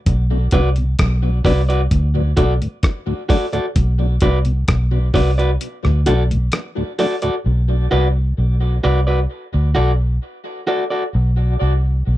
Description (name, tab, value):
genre	dub reggae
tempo	65 BPM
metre	4/4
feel	straight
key	B phrygian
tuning	A4 = 439 Hz
part	vintage muted fingered electric bass	bass	0.1-12.2 s	B1 to D2	-16 LUFS	equal	none
part	dusty soul sampler-style drum kit	drums	0.1-7.4 s	hi-hat, kick drum, rim click	-18 LUFS	equal	none
part	mellow tonewheel organ	accompaniment	0.3-7.3 s	D2 to D4	-25 LUFS	left 2 dB	slow rotary speaker, tape echo
part	electric guitar at the edge of break-up	accompaniment	0.5-11.0 s	F#4 to D5	-22 LUFS	right 1 dB	tape echo
room	little or no reverb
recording	dry, close 1970s-style studio recording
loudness	-15 LUFS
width	side -15 dB against mid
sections	0.0-7.5 A section; 7.5-12.2 B section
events	break 5.6-7.5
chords	0.1 Bm; 1.9 D; 3.8 Bm; 5.6 D; 7.5 Bm; 9.3 D; 11.1 N.C.